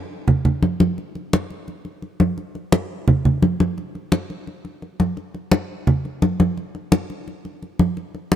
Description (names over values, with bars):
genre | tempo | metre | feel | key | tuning
latin | 171 BPM | 4/4 | straight | none | none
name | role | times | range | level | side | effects
congas | percussion | 0.3-8.4 s | none | -18 LUFS | equal | none
room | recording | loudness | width
light reverb | close, detailed microphones | -18 LUFS | side -10 dB against mid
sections
0.0-8.4 A section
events
none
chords
none